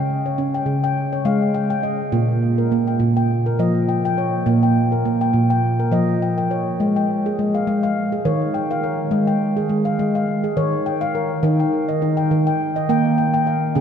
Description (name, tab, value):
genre	world meditative, meditative tuned percussion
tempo	103 BPM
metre	4/4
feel	swing 54% on 16ths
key	unclear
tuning	A4 = 439 Hz
part	handpan	solo	0.0-13.8 s	Bb2 to G5	-17 LUFS	equal	tape echo
room	wet cathedral reverb, RT60 6.8 s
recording	in a vast, echoing space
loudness	-17 LUFS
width	side -8 dB against mid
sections	0.0-13.8 A section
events	none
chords	0.0 Db; 2.1 Bbm; 6.8 Ab5; 11.4 Eb5